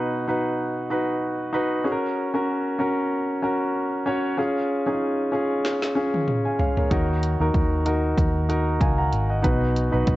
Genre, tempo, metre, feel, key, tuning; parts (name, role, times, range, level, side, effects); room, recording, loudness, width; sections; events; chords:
piano-driven pop; 95 BPM; 4/4; swing 56% on 16ths; Db major; A4 = 440 Hz
clear concert grand piano; accompaniment; 0.0-10.2 s; Cb3 to Bb5; -23 LUFS; equal
deep house drum kit; drums; 5.6-10.2 s; hi-hat, kick drum, snare drum, toms; -24 LUFS; equal; overdrive
vintage muted fingered electric bass; bass; 6.9-10.2 s; Ab1 to Eb2; -23 LUFS; equal
light reverb, digital ambience; worn, warbling old tape, cassette tape, warbly pitch drift, nothing above 7.9 kHz; -21 LUFS; side -17 dB against mid
0.0-10.2 A section
drum fill 5.7-6.9
0.0 Cb; 1.9 Gb; 4.4 Db; 6.9 Ebm; 9.4 Cb